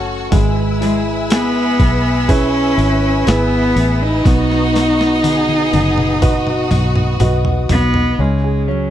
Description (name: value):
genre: pop ballad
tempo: 61 BPM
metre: 4/4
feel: straight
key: E major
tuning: A4 = 439 Hz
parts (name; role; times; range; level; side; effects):
- clear studio violin section; second line; 0.0-7.7 s; E4 to G#4; -25 LUFS; left 1 dB; none
- clear grand piano; accompaniment; 0.0-8.9 s; F#3 to D#5; -23 LUFS; right 6 dB; none
- warm studio string section; sustained chords; 0.0-8.2 s; B4 to E6; -27 LUFS; left 3 dB; none
- direct-recorded clean electric guitar; arpeggios; 0.0-8.9 s; A2 to G#4; -25 LUFS; left 16 dB; spring reverb
- fingered electric bass; bass; 0.0-8.9 s; F#1 to C#2; -18 LUFS; equal; none
- boom bap sampler-style drum kit; drums; 0.3-8.2 s; hi-hat, kick drum, snare drum, toms; -18 LUFS; equal; overdrive
- rich cello; melody; 0.8-8.9 s; F#3 to D#4; -16 LUFS; equal; none
room: little or no reverb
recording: dry, close 1970s-style studio recording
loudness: -12 LUFS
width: side -11 dB against mid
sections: 0.0-8.2 A section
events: drum fill 4.3-8.2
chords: 0.3 E/G#; 4.3 B; 8.2 C#sus2